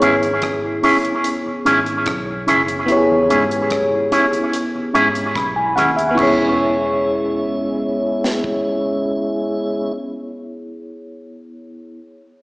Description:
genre	lovers rock reggae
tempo	73 BPM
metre	4/4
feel	straight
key	E major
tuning	A4 = 439 Hz
part	FM electric piano with auto-pan	accompaniment	0.0-12.0 s	B3 to B5	-20 LUFS	left 1 dB	tape echo, slapback echo
part	mellow tonewheel organ	accompaniment	0.0-9.9 s	E2 to E4	-23 LUFS	equal	slow rotary speaker, slapback echo
part	electric guitar with an envelope filter	stabs	0.0-10.0 s	C#4 to G#4	-18 LUFS	equal	tape echo, slapback echo
part	vintage muted fingered electric bass	bass	0.0-9.9 s	E1 to G#2	-30 LUFS	equal	none
part	deep reggae drum kit	drums	0.0-8.6 s	crash cymbal, hi-hat, kick drum, rim click, snare drum	-27 LUFS	equal	slapback echo
room	wet club reverb, RT60 0.5 s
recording	live gig heard through the venue's PA, recital hall reverb, small speaker sound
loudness	-15 LUFS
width	side -23 dB against mid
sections	0.0-6.2 A section; 6.2-9.5 B section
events	none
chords	0.0 E6

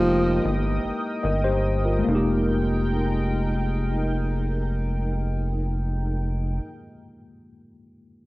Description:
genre	slow six-eight R&B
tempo	46 BPM (dotted quarters)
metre	6/8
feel	straight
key	F minor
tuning	A4 = 441 Hz
part	breathy tenor saxophone	melody	0.0-0.5 s	F3	-24 LUFS	equal	cassette tape, tape echo
part	mellow tine electric piano	accompaniment	0.0-8.3 s	Ab3 to Eb5	-27 LUFS	left 1 dB	medium stereo tremolo, cassette tape
part	chorused pulse-width pad	sustained chords	0.0-6.6 s	Ab3 to Eb6	-32 LUFS	equal	cassette tape
part	rubbery square bass	bass	0.0-6.6 s	F1 to G1	-25 LUFS	equal	none
room	light reverb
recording	home recording on cassette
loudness	-22 LUFS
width	side -20 dB against mid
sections	0.0-2.1 A section; 2.1-7.2 B section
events	slowing down 0.0-2.1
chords	0.0 Fm11

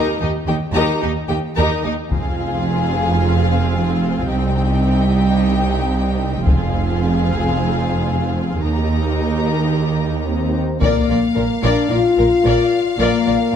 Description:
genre	cinematic, epic orchestral film score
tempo	110 BPM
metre	4/4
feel	straight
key	F dorian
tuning	A4 = 439 Hz
part	warm symphonic violin section	second line	0.0-13.4 s	Eb4 to Bb5	-23 LUFS	left 4 dB	none
part	clear symphonic viola section	accompaniment	0.0-13.6 s	C4 to Bb4	-24 LUFS	right 1 dB	none
part	clear symphonic double bass section	bass	0.2-13.3 s	F1 to Eb2	-21 LUFS	right 2 dB	none
part	warm symphonic cello section	bass	0.2-13.6 s	C2 to Bb2	-21 LUFS	right 2 dB	none
part	taiko ensemble	drums	2.1-3.2, 6.5-7.5, 10.8-11.9 s	none	-20 LUFS	left 1 dB	none
part	mellow French horn section	sustained chords	10.3-13.6 s	Bb3 to F4	-17 LUFS	left 5 dB	none
part	warm symphonic violin section	melody	10.8-13.6 s	F5	-27 LUFS	left 6 dB	none
room	moderate scoring stage reverb, RT60 1.7 s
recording	none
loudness	-15 LUFS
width	side -8 dB against mid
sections	0.0-10.8 A section; 10.8-13.6 B section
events	build-up 0.0-10.8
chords	0.0 Eb; 2.1 Fm; 4.3 Cm; 6.5 Fm; 8.6 Eb; 10.8 Bb

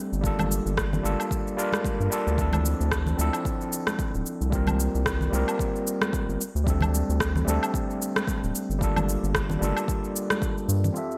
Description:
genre	sunset chillout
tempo	112 BPM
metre	4/4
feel	swing 57% on 16ths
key	G dorian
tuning	A4 = 440 Hz
part	overdriven tine electric piano	accompaniment	0.0-11.2 s	F3 to E5	-31 LUFS	equal	low-pass filter, digital delay
part	round analog bass	bass	0.1-10.9 s	D1 to G2	-28 LUFS	equal	none
part	electronic shaker, woodblock and rim click	drums	0.1-11.2 s	none	-32 LUFS	equal	gated reverb
part	electronic kick drum	drums	0.2-10.5 s	none	-33 LUFS	equal	none
part	congas	percussion	0.4-10.9 s	none	-35 LUFS	equal	none
part	airy breathy pad	sustained chords	11.1-11.2 s	F2	-58 LUFS	equal	none
room	light reverb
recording	bright 1980s-style digital production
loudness	-26 LUFS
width	mono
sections	0.0-11.0 A section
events	none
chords	0.2 Gm9; 2.4 Dm9; 4.5 C7sus4; 6.4 D7sus4; 8.8 Gm9

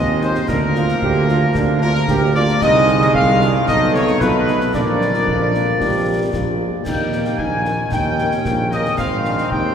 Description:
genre	military-style march for wind band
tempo	113 BPM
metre	2/4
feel	straight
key	unclear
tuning	A4 = 440 Hz
part	dark trumpet section	melody	0.0-9.7 s	Bb4 to Ab5	-23 LUFS	left 1 dB	none
part	clear euphonium	second line	0.0-9.6 s	Bb3 to G4	-22 LUFS	right 3 dB	none
part	clear woodwind section	second line	0.0-9.7 s	Bb4 to Ab5	-22 LUFS	left 2 dB	none
part	clear trombone section	sustained chords	0.0-9.7 s	Eb3 to Db4	-26 LUFS	right 2 dB	none
part	mellow tuba	bass	0.0-9.7 s	Ab1 to Eb2	-19 LUFS	right 2 dB	none
part	mellow French horn section	accompaniment	0.2-9.3 s	Ab3 to Bb4	-26 LUFS	left 3 dB	none
part	concert snare drum, clash cymbals and concert bass drum	drums	0.2-9.7 s	none	-27 LUFS	left 1 dB	none
room	wet cathedral reverb, RT60 6.3 s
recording	recorded in a church or concert hall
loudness	-14 LUFS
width	side -8 dB against mid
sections	0.0-9.7 A section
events	none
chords	0.5 Bb/D; 2.6 Ab/C; 3.7 B7; 4.7 Bb; 6.9 Eb; 7.9 Eb7; 9.0 Ab

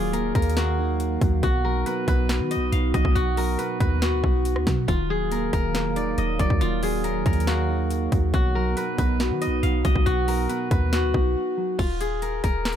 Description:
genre	hip hop, trap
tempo	139 BPM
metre	4/4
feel	half-time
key	Eb harmonic minor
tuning	A4 = 440 Hz
part	steel-string zither	melody	0.0-12.8 s	F4 to F5	-27 LUFS	left 2 dB	low-pass filter, ping-pong delay
part	mellow electric guitar	accompaniment	0.0-11.8 s	B2 to F5	-28 LUFS	right 1 dB	low-pass filter
part	dark analog pad	sustained chords	0.0-11.8 s	Eb3 to F5	-33 LUFS	right 4 dB	lush chorus
part	clean 808-style bass	bass	0.0-12.8 s	Eb1 to D#3	-25 LUFS	equal	none
part	trap drum kit	drums	0.1-12.8 s	crash cymbal, hi-hat, kick drum, rim click, snare drum	-25 LUFS	equal	overdrive
room	digital ambience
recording	none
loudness	-21 LUFS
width	side -9 dB against mid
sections	0.0-11.8 A section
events	break 11.4-11.8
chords	0.0 Ebmadd9; 1.4 B; 4.9 Ebmadd9; 8.3 B; 11.8 Eb5

